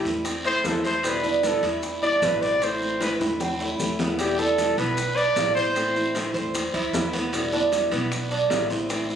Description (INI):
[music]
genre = latin, Cuban son and guajira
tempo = 152 BPM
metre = 4/4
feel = straight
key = E minor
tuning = A4 = 440 Hz
[part]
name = warm trumpet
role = melody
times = 0.0-6.3 s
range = G4 to D5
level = -25 LUFS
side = left 2 dB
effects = plate reverb
[part]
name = flamenco guitar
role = accompaniment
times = 0.0-9.2 s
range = B2 to E4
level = -28 LUFS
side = left 1 dB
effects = none
[part]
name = Cuban tres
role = arpeggios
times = 0.0-9.2 s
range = B3 to C5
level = -26 LUFS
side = right 5 dB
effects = tape echo
[part]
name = upright bass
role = bass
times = 0.0-9.2 s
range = A1 to E2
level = -35 LUFS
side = equal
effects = none
[part]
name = bongos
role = percussion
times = 0.0-9.2 s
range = none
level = -34 LUFS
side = left 3 dB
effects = none
[part]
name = guiro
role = percussion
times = 0.1-9.2 s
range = none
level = -35 LUFS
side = equal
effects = none
[part]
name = maracas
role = percussion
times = 0.1-9.2 s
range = none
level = -38 LUFS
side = equal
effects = none
[part]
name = timbales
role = percussion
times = 0.2-9.1 s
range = none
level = -33 LUFS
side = right 2 dB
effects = none
[sound]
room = moderate large studio reverb, RT60 1.1 s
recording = recorded on a phone in the room, studio reverb, compression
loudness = -21 LUFS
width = side -8 dB against mid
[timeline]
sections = 0.0-4.2 A section; 4.2-9.2 B section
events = trumpet solo 0.0-4.2; drum fill 3.0-4.2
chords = 0.0 Am; 1.0 Em7; 2.6 Am; 4.2 Em7; 5.8 Am; 7.3 Em7